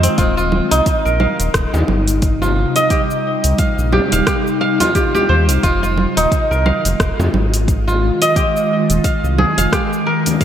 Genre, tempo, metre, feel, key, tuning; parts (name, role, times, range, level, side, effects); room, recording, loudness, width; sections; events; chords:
organic downtempo; 88 BPM; 4/4; swing 57% on 16ths; F minor; A4 = 445 Hz
ethereal airy pad; sustained chords; 0.0-10.4 s; C3 to F4; -21 LUFS; left 1 dB; ensemble chorus, built-in reverb, phaser, sidechain pumping, shimmer reverb
kora; arpeggios; 0.0-10.4 s; C4 to F5; -17 LUFS; right 1 dB; tape echo, shimmer reverb, slapback echo
round analog bass; bass; 0.0-9.7 s; Eb1 to F2; -17 LUFS; equal; sidechain pumping
deep house drum kit; drums; 0.0-10.4 s; cabasa, congas, hi-hat, rim click; -21 LUFS; right 2 dB; studio reverb
electronic kick drum; drums; 0.2-10.4 s; -18 LUFS; equal; studio reverb
frame drum; percussion; 1.7-10.4 s; -26 LUFS; equal
moderate lush hall reverb, RT60 2.5 s; big arena sound; -13 LUFS; side -10 dB against mid
0.0-10.4 A section
0.2 Eb6; 5.6 Fm7